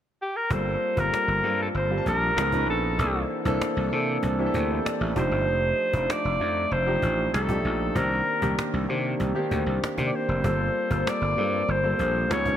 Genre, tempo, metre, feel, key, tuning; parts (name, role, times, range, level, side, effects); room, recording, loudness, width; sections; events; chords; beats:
polished 1980s jazz-funk pop; 97 BPM; 4/4; straight; G minor; A4 = 440 Hz
clear alto saxophone; melody; 0.2-12.6 s; G4 to D5; -26 LUFS; equal; ping-pong delay
clear concert grand piano; accompaniment; 0.5-12.6 s; Eb3 to A5; -28 LUFS; equal; analog chorus
gritty slap bass; bass; 0.5-12.6 s; F1 to C3; -27 LUFS; equal; overdrive
cajon; drums; 0.5-12.6 s; -32 LUFS; equal
light reverb, studio reverb; bright 1980s-style digital production; -23 LUFS; side -10 dB against mid
0.5-12.6 A section
0.0 N.C.; 0.5 Gm11; 2.4 C#9; 3.0 C13; 5.2 F13; 8.0 Cm9; 10.4 Gm11
| 0.51 1.13 1.75 2.37 | 2.99 3.61 4.23 4.85 | 5.47 6.09 6.71 7.33 | 7.96 8.58 9.20 9.82 | 10.44 11.06 11.68 12.30